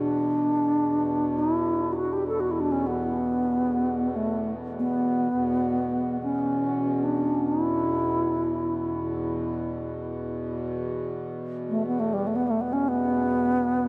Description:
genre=world meditative, free-time meditation music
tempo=free time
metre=none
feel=none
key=unclear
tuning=A4 = 440 Hz
part: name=bright bass flute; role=melody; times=0.0-13.9 s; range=G3 to A4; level=-27 LUFS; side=equal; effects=none
part: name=hand-pumped harmonium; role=drone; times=0.0-13.9 s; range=E2 to B2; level=-34 LUFS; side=equal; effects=none
room=wet huge ambient reverb, RT60 7.5 s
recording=none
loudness=-26 LUFS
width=mono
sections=0.0-13.9 A section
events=none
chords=none

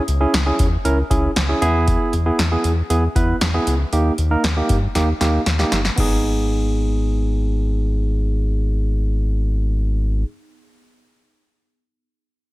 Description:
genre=synth-pop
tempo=117 BPM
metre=4/4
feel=straight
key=G# harmonic minor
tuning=A4 = 440 Hz
part: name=round analog bass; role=bass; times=0.1-10.2 s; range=G1 to G2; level=-19 LUFS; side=equal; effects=none
part: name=electro analog drum machine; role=drums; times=0.1-6.1 s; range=crash cymbal, hi-hat, kick drum, snare drum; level=-22 LUFS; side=equal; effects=gated reverb
part: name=barky tine electric piano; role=accompaniment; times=0.2-10.3 s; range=A#3 to B4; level=-21 LUFS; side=right 1 dB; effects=low-pass filter
room=digital ambience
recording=none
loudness=-16 LUFS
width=side -18 dB against mid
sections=0.0-6.0 A section; 6.0-10.1 B section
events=filter sweep on tine electric piano 0.0-6.0; drum fill 5.0-6.0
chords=0.0 C#m; 1.6 E; 3.9 D#; 6.0 G#m

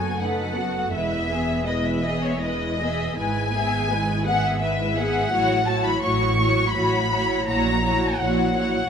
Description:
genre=classical, slow romantic movement for string orchestra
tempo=83 BPM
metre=3/4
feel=rubato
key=E major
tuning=A4 = 440 Hz
part: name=warm symphonic violin section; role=melody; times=0.0-8.9 s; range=C#5 to C#6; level=-24 LUFS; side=left 3 dB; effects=none
part: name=rich symphonic violin section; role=second line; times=0.0-8.9 s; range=F#4 to E5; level=-28 LUFS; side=left 2 dB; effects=none
part: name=dark studio viola section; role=accompaniment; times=0.0-8.9 s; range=F#3 to G#4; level=-28 LUFS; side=right 1 dB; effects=none
part: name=warm symphonic cello section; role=bass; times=0.0-8.8 s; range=E2 to A#2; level=-28 LUFS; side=right 3 dB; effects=none
part: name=warm symphonic double bass section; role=bass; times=0.0-8.8 s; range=E1 to A#1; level=-30 LUFS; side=right 3 dB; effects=none
room=wet recital hall reverb, RT60 1.8 s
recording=minimal, uncompressed stereo recording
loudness=-20 LUFS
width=side -7 dB against mid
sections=0.0-8.9 A section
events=none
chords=0.0 B7/F#; 0.9 E; 3.2 E/G#; 5.3 F#m7/A; 7.5 F#7/A#

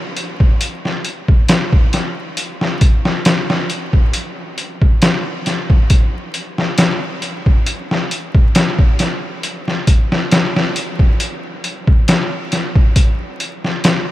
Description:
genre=trip hop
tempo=68 BPM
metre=4/4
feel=swing 54% on 16ths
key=none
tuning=none
part: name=trip hop sampler-style drum kit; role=drums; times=0.2-14.1 s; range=hi-hat, kick drum, snare drum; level=-13 LUFS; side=equal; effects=none
room=light reverb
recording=vinyl crackle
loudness=-13 LUFS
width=side -15 dB against mid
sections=0.0-14.1 A section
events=none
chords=none

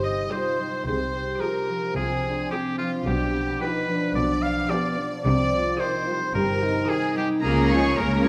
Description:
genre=cinematic, playful, whimsical film cue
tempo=110 BPM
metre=4/4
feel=straight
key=C minor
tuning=A4 = 440 Hz
part: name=bright oboe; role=second line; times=0.0-8.3 s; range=F4 to F5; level=-31 LUFS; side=equal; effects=none
part: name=warm studio violin section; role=second line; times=0.0-8.3 s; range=F4 to F5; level=-34 LUFS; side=equal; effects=none
part: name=mellow French horn section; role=sustained chords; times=0.0-8.3 s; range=B3 to Ab4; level=-32 LUFS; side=equal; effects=none
part: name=concert harp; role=arpeggios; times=0.0-8.3 s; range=B2 to F4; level=-33 LUFS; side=equal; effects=none
part: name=rich studio cello section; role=bass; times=0.0-8.3 s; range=G2 to Db3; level=-30 LUFS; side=equal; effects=none
part: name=rich studio double bass section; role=bass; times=0.0-8.3 s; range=G1 to Db2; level=-31 LUFS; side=equal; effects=none
part: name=warm studio violin section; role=melody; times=0.3-8.3 s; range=Bb5 to Eb6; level=-36 LUFS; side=equal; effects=none
part: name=rich studio viola section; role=accompaniment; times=0.3-8.3 s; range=Eb3 to Db5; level=-32 LUFS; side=equal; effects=none
room=moderate scoring stage reverb, RT60 1.6 s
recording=none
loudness=-24 LUFS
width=mono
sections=0.0-8.3 A section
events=none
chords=0.0 Cm; 0.9 Dm7b5/C; 3.1 G7/B; 5.2 Cm; 7.4 Bbm/Db

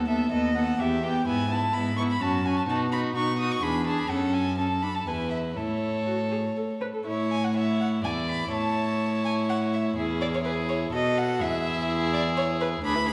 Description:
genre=quick classical-period movement for string quartet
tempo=125 BPM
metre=3/4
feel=rubato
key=A major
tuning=A4 = 440 Hz
part: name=warm violin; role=second line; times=0.0-13.1 s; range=E4 to D5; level=-34 LUFS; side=equal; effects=none
part: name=warm viola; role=accompaniment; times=0.0-13.1 s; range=B3 to B4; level=-32 LUFS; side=equal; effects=none
part: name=rich cello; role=bass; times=0.0-13.1 s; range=D2 to B2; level=-31 LUFS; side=equal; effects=none
part: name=warm violin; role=melody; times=0.1-13.1 s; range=B4 to D#6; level=-32 LUFS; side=equal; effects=none
room=wet recital hall reverb, RT60 1.4 s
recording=recorded in a church or concert hall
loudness=-27 LUFS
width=mono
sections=0.0-7.1 A section; 7.1-13.1 B section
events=none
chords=0.0 B7/D#; 0.8 Em; 1.3 E/G#; 2.2 F#m; 2.7 B; 3.6 E7; 4.1 F#m; 5.1 E; 5.6 A; 8.0 E7(no3); 8.5 A; 10.0 E; 10.9 B7; 11.4 E

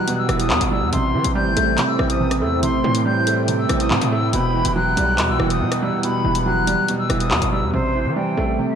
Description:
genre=hip hop, drill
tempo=141 BPM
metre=4/4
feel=half-time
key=unclear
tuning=A4 = 440 Hz
part: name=silver concert flute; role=melody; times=0.0-8.8 s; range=C5 to G6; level=-23 LUFS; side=left 2 dB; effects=low-pass filter, ping-pong delay
part: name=felt-muted upright piano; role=accompaniment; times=0.0-8.8 s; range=B2 to A3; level=-22 LUFS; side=right 3 dB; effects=low-pass filter
part: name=dark analog pad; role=sustained chords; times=0.0-8.8 s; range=E3 to G5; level=-26 LUFS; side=right 2 dB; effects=chorus
part: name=drill drum kit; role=drums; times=0.1-7.5 s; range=handclaps, hi-hat, rim click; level=-24 LUFS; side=left 2 dB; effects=vintage 12-bit sampler grit
part: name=distorted 808-style bass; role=bass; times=0.3-8.6 s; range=E1 to E3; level=-23 LUFS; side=left 1 dB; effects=distortion
room=moderate plate reverb, RT60 1.4 s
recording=dreamy mix soaked in reverb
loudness=-17 LUFS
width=side -8 dB against mid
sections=0.0-7.7 A section; 7.7-8.8 B section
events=none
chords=0.0 Emadd9; 0.9 Am7; 4.3 Emadd9; 7.7 Am7

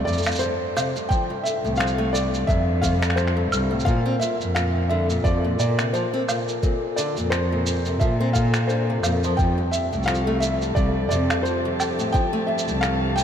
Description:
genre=folktronica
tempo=87 BPM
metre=4/4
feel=swing 56% on 16ths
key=Bb lydian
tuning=A4 = 440 Hz
part: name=felt-muted upright piano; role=melody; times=0.0-13.2 s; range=C5 to G5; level=-26 LUFS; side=equal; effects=tape echo
part: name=vibraphone with soft mallets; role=second line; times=0.0-13.2 s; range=A4 to Bb4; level=-30 LUFS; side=left 6 dB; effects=tape echo
part: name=picked old ladder-braced acoustic guitar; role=arpeggios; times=0.1-13.2 s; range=G2 to D4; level=-28 LUFS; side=equal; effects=tape echo
part: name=dark cello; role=bass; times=0.1-13.2 s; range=C2 to Bb2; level=-24 LUFS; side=equal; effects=tube saturation
part: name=electronic cabasa, finger snaps and woodblock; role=drums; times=0.1-13.2 s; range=none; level=-29 LUFS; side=right 1 dB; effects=overdrive
part: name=electronic kick drum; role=drums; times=1.1-12.3 s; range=none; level=-23 LUFS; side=equal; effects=overdrive
part: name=muted string quartet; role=sustained chords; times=9.4-13.2 s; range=F3 to A5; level=-31 LUFS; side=right 2 dB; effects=none
room=moderate cathedral reverb, RT60 6.3 s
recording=dreamy mix soaked in reverb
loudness=-20 LUFS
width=side -8 dB against mid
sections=0.0-13.2 A section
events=none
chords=0.0 Fadd9; 3.9 Bbsus2; 9.4 Fadd9

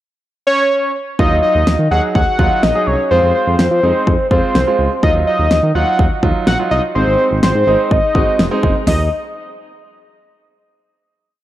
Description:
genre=synth-pop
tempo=125 BPM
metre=4/4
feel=straight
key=Eb dorian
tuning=A4 = 440 Hz
part: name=fat analog lead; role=melody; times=0.5-9.1 s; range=C5 to Gb5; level=-15 LUFS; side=equal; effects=tape echo
part: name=clear grand piano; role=accompaniment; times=1.2-8.7 s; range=Gb3 to Ab4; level=-20 LUFS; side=right 3 dB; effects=tape echo
part: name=smooth synth bass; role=bass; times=1.2-9.1 s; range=F1 to F3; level=-17 LUFS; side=equal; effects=none
part: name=pop drum kit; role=drums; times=1.2-9.0 s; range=hi-hat, kick drum, snare drum, toms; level=-16 LUFS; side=equal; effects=overdrive
room=moderate spring reverb, RT60 2.4 s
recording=echo-heavy mix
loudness=-12 LUFS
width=side -13 dB against mid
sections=0.0-1.2 pickup bar; 1.2-8.9 verse; 8.9-10.8 final note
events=none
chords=0.0 N.C.; 1.2 Ebmadd9; 3.1 Fm; 5.0 Ebmadd9; 7.0 Ab; 8.9 N.C.

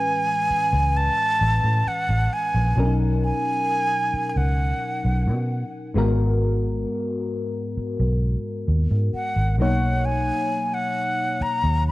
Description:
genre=contemporary R&B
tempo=66 BPM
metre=4/4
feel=straight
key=B major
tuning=A4 = 439 Hz
part: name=breathy silver concert flute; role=melody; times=0.0-11.9 s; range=F#5 to B5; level=-23 LUFS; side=right 1 dB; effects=ping-pong delay
part: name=mellow FM electric piano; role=accompaniment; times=0.0-11.9 s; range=G#2 to C#5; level=-27 LUFS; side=left 2 dB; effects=chorus
part: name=vintage muted fingered electric bass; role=bass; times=0.5-11.9 s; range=G#1 to B2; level=-21 LUFS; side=equal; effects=none
room=light reverb, small room ambience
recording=worn, warbling old tape, cassette tape, warbly pitch drift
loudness=-20 LUFS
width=side -18 dB against mid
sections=0.0-11.9 A section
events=none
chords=0.0 Amaj7; 2.8 Bmaj7; 6.0 G#m7; 9.6 Bmaj7

